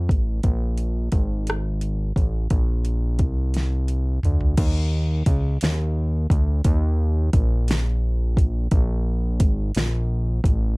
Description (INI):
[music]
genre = slow six-eight R&B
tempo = 58 BPM (dotted quarters)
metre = 6/8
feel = straight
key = unclear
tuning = A4 = 440 Hz
[part]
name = fat analog bass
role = bass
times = 0.0-10.8 s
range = Ab1 to F2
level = -21 LUFS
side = equal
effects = none
[part]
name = smooth R&B drum kit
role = drums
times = 0.1-10.6 s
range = crash cymbal, hi-hat, kick drum, rim click, snare drum, toms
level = -21 LUFS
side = equal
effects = none
[sound]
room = little or no reverb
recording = dark, warm production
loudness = -20 LUFS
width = side -31 dB against mid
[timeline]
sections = 0.0-4.6 A section; 4.6-10.8 B section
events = drum fill 3.5-4.6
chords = none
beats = | 0.44 1.47 | 2.51 3.54 | 4.58 5.61 | 6.65 7.68 | 8.71 9.75